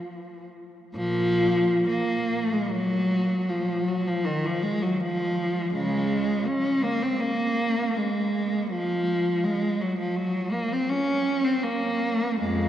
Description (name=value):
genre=classical, free, expressive piece for unaccompanied cello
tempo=54-84 BPM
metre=3/4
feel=rubato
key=unclear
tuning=A4 = 439 Hz
part: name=warm cello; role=solo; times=0.0-12.7 s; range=F2 to Db4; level=-23 LUFS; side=equal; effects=none
room=wet cathedral reverb, RT60 4.8 s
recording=worn, warbling old tape, cassette tape, warbly pitch drift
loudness=-23 LUFS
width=side -11 dB against mid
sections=0.9-12.7 A section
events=none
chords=none